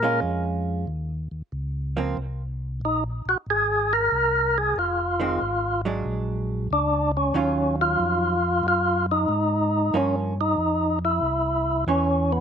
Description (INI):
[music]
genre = soul jazz organ trio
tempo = 93 BPM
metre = 4/4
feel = swing 67% on 8ths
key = Eb dorian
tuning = A4 = 441 Hz
[part]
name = percussive tonewheel organ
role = melody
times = 0.0-12.4 s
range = Cb4 to Bb4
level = -22 LUFS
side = equal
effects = slow rotary speaker, slapback echo
[part]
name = vintage hollow-body jazz guitar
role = accompaniment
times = 0.0-12.4 s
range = Eb3 to F4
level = -28 LUFS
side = right 5 dB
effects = slapback echo
[part]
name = mellow tonewheel organ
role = bass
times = 0.0-12.4 s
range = F1 to Bb2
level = -28 LUFS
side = equal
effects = chorus vibrato, slow rotary speaker
[sound]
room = little or no reverb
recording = recorded outdoors, with no room sound, nothing above 10.4 kHz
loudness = -21 LUFS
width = side -7 dB against mid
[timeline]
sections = 0.0-12.4 A section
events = none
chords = 0.0 Bbm7; 0.9 Eb5; 2.2 Abadd9; 4.8 Fm7; 6.1 Bb7alt; 7.3 Ebm9; 9.9 Gm7b5; 11.2 C